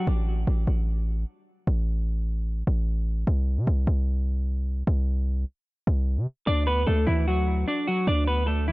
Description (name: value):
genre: hip hop, trap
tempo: 150 BPM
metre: 4/4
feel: half-time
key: unclear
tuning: A4 = 440 Hz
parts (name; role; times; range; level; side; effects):
- semi-hollow electric guitar; melody; 0.0-0.1, 6.5-8.7 s; E3 to D5; -26 LUFS; equal; low-pass filter, analog delay
- hard-hitting 808-style bass; bass; 0.1-8.7 s; A1 to C3; -23 LUFS; equal; none
room: little or no reverb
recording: echo-heavy mix, nothing above 10.6 kHz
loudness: -23 LUFS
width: side -21 dB against mid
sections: 0.0-6.5 A section; 6.5-8.7 B section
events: break 0.1-6.5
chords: 0.1 N.C.; 6.5 D